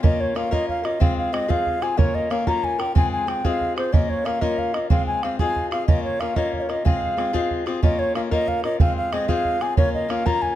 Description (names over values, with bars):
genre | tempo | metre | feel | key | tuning
celtic folk, Celtic jig | 123 BPM (dotted quarters) | 6/8 | straight | unclear | A4 = 440 Hz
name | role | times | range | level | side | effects
baroque flute | melody | 0.0-10.6 s | C5 to Bb5 | -24 LUFS | equal | none
fingerpicked swing-style acoustic guitar | accompaniment | 0.0-10.6 s | Ab3 to Bb4 | -25 LUFS | left 4 dB | none
bodhran | percussion | 0.0-10.5 s | none | -22 LUFS | right 2 dB | none
room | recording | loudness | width
light reverb | close, detailed microphones | -19 LUFS | side -12 dB against mid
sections
0.0-7.8 A section; 7.8-10.6 A section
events
none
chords
0.0 Bbm; 1.0 Fm/Ab; 2.0 Bbm; 3.0 Fm/Ab; 3.9 Bbm; 4.9 Fm/Ab; 5.9 Bbm; 6.9 Fm/Ab; 7.8 Bbm; 8.8 Fm/Ab; 9.8 Bbm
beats
| 0.04 0.52 | 1.01 1.50 | 1.98 2.47 | 2.96 3.44 | 3.93 4.42 | 4.91 5.39 | 5.88 6.37 | 6.85 7.34 | 7.83 8.31 | 8.80 9.29 | 9.77 10.26